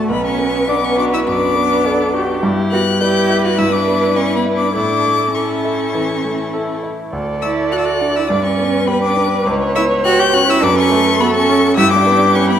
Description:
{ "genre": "quick classical-period movement for piano quintet", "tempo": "103 BPM", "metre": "4/4", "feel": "straight", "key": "unclear", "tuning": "A4 = 437 Hz", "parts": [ { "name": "rich violin", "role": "melody", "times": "0.0-12.6 s", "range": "B5 to G6", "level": "-19 LUFS", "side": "left 6 dB", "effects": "none" }, { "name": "rich cello", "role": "second line", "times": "0.0-12.6 s", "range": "A3 to G4", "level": "-19 LUFS", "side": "right 5 dB", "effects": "none" }, { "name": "rich violin", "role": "second line", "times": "0.0-12.6 s", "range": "A3 to B4", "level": "-24 LUFS", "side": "left 5 dB", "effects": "none" }, { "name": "bright concert grand piano", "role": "accompaniment", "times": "0.0-12.6 s", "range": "B1 to D5", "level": "-18 LUFS", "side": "equal", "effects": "none" }, { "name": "warm viola", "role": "accompaniment", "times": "0.0-12.6 s", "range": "G4 to D5", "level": "-20 LUFS", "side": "right 2 dB", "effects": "none" } ], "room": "wet scoring stage reverb, RT60 1.8 s", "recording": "none", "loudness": "-13 LUFS", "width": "side -9 dB against mid", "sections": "0.0-12.6 A section", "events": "none", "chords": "0.1 Bm; 2.4 Em7/G; 4.8 A; 7.1 D5; 8.3 G; 9.5 C#m7b5; 10.6 F#m; 11.8 Em/G" }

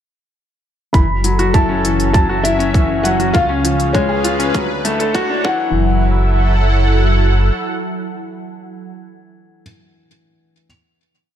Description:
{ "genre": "piano and strings electronica", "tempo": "100 BPM", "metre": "4/4", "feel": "straight", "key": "F# minor", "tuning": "A4 = 440 Hz", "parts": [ { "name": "felt-muted upright piano", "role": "melody", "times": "0.9-9.6 s", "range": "C#5 to B5", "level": "-21 LUFS", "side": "left 1 dB", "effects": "low-pass filter, digital delay" }, { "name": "lush unison pad", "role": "sustained chords", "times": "0.9-8.9 s", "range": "C#3 to F#5", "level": "-21 LUFS", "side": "right 1 dB", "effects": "chorus, phaser" }, { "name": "clear upright piano", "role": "riff", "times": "0.9-10.7 s", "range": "E3 to A4", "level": "-20 LUFS", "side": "left 2 dB", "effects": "digital delay" }, { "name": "round analog bass", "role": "bass", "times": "0.9-7.5 s", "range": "F#1 to D2", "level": "-18 LUFS", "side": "equal", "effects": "sidechain pumping" }, { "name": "electronic hi-hat", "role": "drums", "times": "0.9-5.3 s", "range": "none", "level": "-25 LUFS", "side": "left 1 dB", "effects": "high-pass filter on hats, small room ambience" }, { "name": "electronic kick drum", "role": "drums", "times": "0.9-5.6 s", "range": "none", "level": "-16 LUFS", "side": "equal", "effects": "small room ambience" } ], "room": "light reverb", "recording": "dark, warm production, high-pass filter", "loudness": "-13 LUFS", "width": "side -10 dB against mid", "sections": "0.9-5.7 build; 5.7-8.1 final chord", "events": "build-up 0.9-5.7; filter sweep 0.9-5.7", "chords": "0.9 F#m7; 3.3 C#7; 4.5 Dmaj7; 5.4 Esus2/F#; 5.7 F#m7" }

